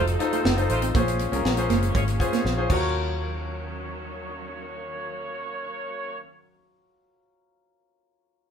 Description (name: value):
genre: polished 1980s jazz-funk pop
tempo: 120 BPM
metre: 4/4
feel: straight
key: Eb dorian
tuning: A4 = 439 Hz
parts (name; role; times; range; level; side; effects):
- mellow horn section; second line; 0.0-6.2 s; A3 to Db5; -32 LUFS; right 1 dB; none
- bright concert grand piano; accompaniment; 0.0-8.5 s; Db4 to Eb5; -28 LUFS; left 3 dB; none
- warm studio string section; sustained chords; 0.0-6.2 s; Eb3 to A4; -35 LUFS; right 3 dB; none
- electric guitar at the edge of break-up; riff; 0.0-3.0 s; Ab3 to Eb4; -30 LUFS; right 7 dB; none
- vintage muted fingered electric bass; bass; 0.0-6.2 s; F1 to Eb2; -28 LUFS; equal; none
- tight funk drum kit; drums; 0.1-2.8 s; crash cymbal, hi-hat, kick drum, snare drum; -28 LUFS; equal; none
room: moderate studio reverb, RT60 0.8 s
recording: band playing live in one room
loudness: -23 LUFS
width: side -7 dB against mid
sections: 0.0-2.9 A section; 2.9-6.9 B section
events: drum fill 2.4-2.9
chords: 0.0 F7; 0.9 Bbm7; 2.7 Ebm7